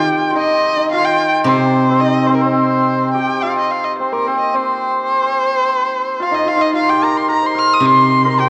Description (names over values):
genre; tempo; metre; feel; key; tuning
chinese traditional, Chinese chamber ensemble; 109 BPM; 2/4; rubato; C yu mode; A4 = 441 Hz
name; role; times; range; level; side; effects
rich erhu; melody; 0.0-8.5 s; Bb4 to F6; -20 LUFS; equal; none
hammered dulcimer; second line; 0.0-8.5 s; Bb3 to F5; -18 LUFS; equal; none
steel-string zither; accompaniment; 0.0-3.1, 7.8-8.5 s; C3 to Eb3; -21 LUFS; equal; none
room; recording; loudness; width
wet concert hall reverb, RT60 2.0 s; worn, warbling old tape, cassette tape, warbly pitch drift; -15 LUFS; mono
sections
0.0-3.4 A section; 3.4-8.5 B section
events
none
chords
none